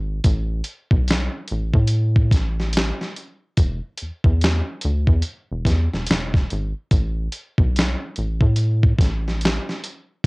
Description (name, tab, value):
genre	R&B, neo-soul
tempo	72 BPM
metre	4/4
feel	swing 61% on 16ths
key	unclear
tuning	A4 = 440 Hz
part	rubbery square bass	bass	0.0-9.6 s	E1 to A2	-21 LUFS	equal	none
part	dusty soul sampler-style drum kit	drums	0.2-10.3 s	hi-hat, kick drum, snare drum	-19 LUFS	equal	cassette tape
room	little or no reverb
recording	home recording on cassette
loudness	-18 LUFS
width	side -29 dB against mid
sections	0.0-10.3 A section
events	none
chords	none